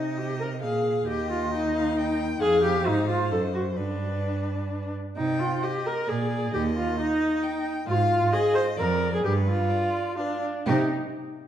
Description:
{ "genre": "quick classical-period movement for string quartet", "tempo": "132 BPM", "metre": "3/4", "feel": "rubato", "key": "C minor", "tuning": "A4 = 441 Hz", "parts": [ { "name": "clear violin", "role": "melody", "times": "0.0-10.9 s", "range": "G4 to G5", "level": "-41 LUFS", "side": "left 10 dB", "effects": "none" }, { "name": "clear violin", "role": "second line", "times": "0.0-10.9 s", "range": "G4 to G5", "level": "-34 LUFS", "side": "left 4 dB", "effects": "none" }, { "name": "clear viola", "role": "accompaniment", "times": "0.0-10.9 s", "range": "D4 to C5", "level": "-25 LUFS", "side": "equal", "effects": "none" }, { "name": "clear cello", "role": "bass", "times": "0.0-10.9 s", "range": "Eb2 to C3", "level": "-28 LUFS", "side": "right 3 dB", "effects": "none" } ], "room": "wet recital hall reverb, RT60 1.7 s", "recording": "dark, warm production", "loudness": "-23 LUFS", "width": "side -10 dB against mid", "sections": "0.0-10.7 A section", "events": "none", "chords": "0.0 Cm; 0.6 Bb5; 1.1 Eb; 2.4 Fm; 3.3 F#dim7; 3.8 G; 5.2 Cm; 6.1 Bb; 6.5 Eb; 7.9 Ab5; 8.8 Bb7/F; 9.2 G7; 10.7 C5" }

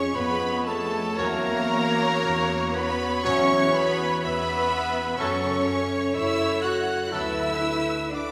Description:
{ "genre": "classical", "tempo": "56-63 BPM", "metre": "4/4", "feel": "rubato", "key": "unclear", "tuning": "A4 = 440 Hz", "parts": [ { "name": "rich studio violin section", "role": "melody", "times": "0.0-8.3 s", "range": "A5 to F#6", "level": "-34 LUFS", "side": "equal", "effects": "none" }, { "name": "dark clarinet", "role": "second line", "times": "0.0-8.3 s", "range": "A4 to F#5", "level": "-35 LUFS", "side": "equal", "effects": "none" }, { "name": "rich studio violin section", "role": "second line", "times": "0.0-8.3 s", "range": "A4 to F#5", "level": "-37 LUFS", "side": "equal", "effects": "none" }, { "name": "warm cor anglais", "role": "second line", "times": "0.0-8.3 s", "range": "B4 to C#5", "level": "-36 LUFS", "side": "equal", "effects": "none" }, { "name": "mellow bassoon", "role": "accompaniment", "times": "0.0-8.3 s", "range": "F#3 to A3", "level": "-34 LUFS", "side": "equal", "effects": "none" }, { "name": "rich studio viola section", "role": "accompaniment", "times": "0.0-8.3 s", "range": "G#4 to E5", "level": "-36 LUFS", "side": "equal", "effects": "none" }, { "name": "dark French horn section", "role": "sustained chords", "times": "0.0-8.3 s", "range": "A3 to F#4", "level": "-33 LUFS", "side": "equal", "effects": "none" }, { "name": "concert harp", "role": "arpeggios", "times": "0.0-8.3 s", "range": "E2 to C#6", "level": "-38 LUFS", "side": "equal", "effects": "none" }, { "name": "rich studio cello section", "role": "bass", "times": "0.0-8.3 s", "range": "A3 to F#4", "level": "-35 LUFS", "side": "equal", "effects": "none" }, { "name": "rich studio double bass section", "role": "bass", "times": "0.0-8.3 s", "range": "D2 to F#2", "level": "-37 LUFS", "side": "equal", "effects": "none" }, { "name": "silver concert flute", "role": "second line", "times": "0.1-8.3 s", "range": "A5 to F#6", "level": "-34 LUFS", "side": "equal", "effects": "none" }, { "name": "bright trombone section", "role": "sustained chords", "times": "1.2-7.5 s", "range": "F#3 to C#4", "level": "-36 LUFS", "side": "equal", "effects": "none" }, { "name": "warm trumpet", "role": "stabs", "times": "1.2-7.5 s", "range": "A4 to C#5", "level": "-36 LUFS", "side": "equal", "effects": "none" } ], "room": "wet scoring stage reverb, RT60 1.6 s", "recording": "recorded in a church or concert hall", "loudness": "-24 LUFS", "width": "mono", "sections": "0.0-8.3 A section", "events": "none", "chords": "0.0 C#/E#; 1.2 F#7/E; 5.2 F#m; 7.1 Bm7/D" }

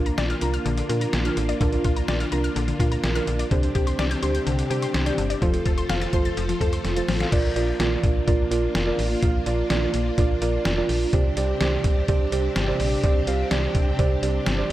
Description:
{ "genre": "synth-pop", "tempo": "126 BPM", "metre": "4/4", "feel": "straight", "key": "Bb major", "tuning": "A4 = 440 Hz", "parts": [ { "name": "muted felt-like synth keys", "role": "accompaniment", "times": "0.0-14.7 s", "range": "D4 to F5", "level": "-26 LUFS", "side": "right 4 dB", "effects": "chorus" }, { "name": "string machine, violas", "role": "sustained chords", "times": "0.0-14.7 s", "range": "C3 to C5", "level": "-30 LUFS", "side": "left 2 dB", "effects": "ensemble chorus" }, { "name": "analog pluck", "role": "arpeggios", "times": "0.0-7.3 s", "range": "D3 to A6", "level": "-31 LUFS", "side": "left 7 dB", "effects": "chorus, slapback echo" }, { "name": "slap-like FM bass", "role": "bass", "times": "0.0-14.7 s", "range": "F1 to C3", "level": "-26 LUFS", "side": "equal", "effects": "none" }, { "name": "trip hop sampler-style drum kit", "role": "drums", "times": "0.1-14.7 s", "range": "crash cymbal, hi-hat, kick drum, snare drum", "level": "-25 LUFS", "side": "equal", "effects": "none" } ], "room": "light reverb, digital ambience", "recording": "none", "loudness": "-20 LUFS", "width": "side -14 dB against mid", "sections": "0.0-7.3 A section; 7.3-14.7 B section", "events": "drum fill 6.8-7.3", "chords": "0.0 Bb; 3.5 Csus2; 5.4 F; 7.3 Bb; 11.1 Csus2" }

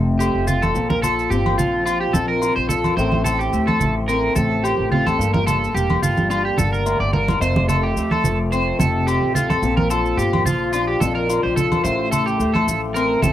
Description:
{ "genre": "highlife guitar band", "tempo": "108 BPM", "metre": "4/4", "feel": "swing 53% on 16ths", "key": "F major", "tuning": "A4 = 440 Hz", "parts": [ { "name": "fingerpicked acoustic archtop guitar", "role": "accompaniment", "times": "0.0-13.3 s", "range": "F2 to A4", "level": "-24 LUFS", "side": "left 5 dB", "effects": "none" }, { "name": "upright bass", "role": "bass", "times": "0.0-13.3 s", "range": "E1 to D2", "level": "-23 LUFS", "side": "equal", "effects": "none" }, { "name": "electric guitar at the edge of break-up", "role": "arpeggios", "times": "0.2-13.3 s", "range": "F4 to D5", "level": "-21 LUFS", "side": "right 4 dB", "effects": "analog chorus, analog delay" }, { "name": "agogo bells", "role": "percussion", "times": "0.2-13.1 s", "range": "none", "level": "-28 LUFS", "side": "left 12 dB", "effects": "none" }, { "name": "maracas", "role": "percussion", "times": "0.2-13.3 s", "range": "none", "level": "-32 LUFS", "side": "left 8 dB", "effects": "none" }, { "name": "congas", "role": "percussion", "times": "0.5-13.3 s", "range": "none", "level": "-22 LUFS", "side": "right 2 dB", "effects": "none" } ], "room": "light reverb", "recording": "home recording on cassette", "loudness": "-17 LUFS", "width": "side -12 dB against mid", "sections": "0.0-13.3 A section", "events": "none", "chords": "0.0 F; 0.8 Bbadd9; 3.0 F/A; 5.2 Gmadd9; 7.4 F; 9.6 Bbadd9; 11.8 F/A" }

